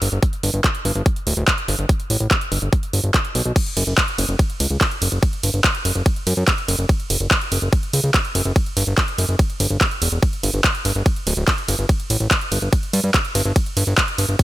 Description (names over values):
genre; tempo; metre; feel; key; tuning
psychedelic trance; 144 BPM; 4/4; straight; unclear; A4 = 439 Hz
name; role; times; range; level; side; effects
fat analog bass; bass; 0.0-14.4 s; D1 to G2; -20 LUFS; equal; none
big-room dance drum kit; drums; 0.0-14.4 s; crash cymbal, handclaps, hi-hat, ride cymbal; -21 LUFS; right 1 dB; overdrive
electronic kick drum; drums; 0.2-14.4 s; none; -18 LUFS; equal; overdrive
room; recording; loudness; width
digital ambience; none; -17 LUFS; side -15 dB against mid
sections
0.0-14.4 A section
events
none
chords
none